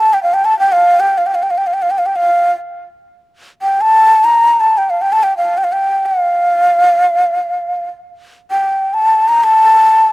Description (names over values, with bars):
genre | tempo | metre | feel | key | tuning
Arabic maqam ensemble | free time | none | none | unclear | A4 = 439 Hz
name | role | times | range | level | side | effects
breathy mellow ney | solo | 0.0-10.1 s | F5 to Bb5 | -10 LUFS | equal | slapback echo
room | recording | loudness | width
little or no reverb | recorded outdoors, with no room sound | -10 LUFS | side -21 dB against mid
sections
0.0-10.1 A section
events
none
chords
none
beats
free time